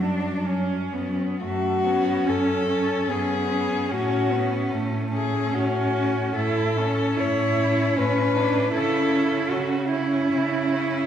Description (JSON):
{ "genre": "classical, lyrical piece for cello ensemble", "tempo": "74 BPM", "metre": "3/4", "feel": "uneven beats, rubato", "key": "F# minor", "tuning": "A4 = 443 Hz", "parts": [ { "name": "warm cello", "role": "melody", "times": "0.0-9.5 s", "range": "C#4 to C#5", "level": "-25 LUFS", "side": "left 4 dB", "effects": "none" }, { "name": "rich cello", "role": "second line", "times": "0.0-11.1 s", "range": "A3 to F#4", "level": "-27 LUFS", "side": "right 5 dB", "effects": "none" }, { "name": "warm cello", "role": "accompaniment", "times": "0.0-11.1 s", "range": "F#3 to C#4", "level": "-28 LUFS", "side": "left 1 dB", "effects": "none" }, { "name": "clear cello", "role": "bass", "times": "0.0-11.0 s", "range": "F#2 to C#3", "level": "-27 LUFS", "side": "right 1 dB", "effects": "none" } ], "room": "wet scoring stage reverb, RT60 1.9 s", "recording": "heard from further back in the room", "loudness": "-21 LUFS", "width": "side -9 dB against mid", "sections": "0.0-1.4 A section; 1.4-11.1 B section", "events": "none", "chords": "0.0 F#5; 1.4 F#m; 3.9 F#m/A; 8.7 A/C#" }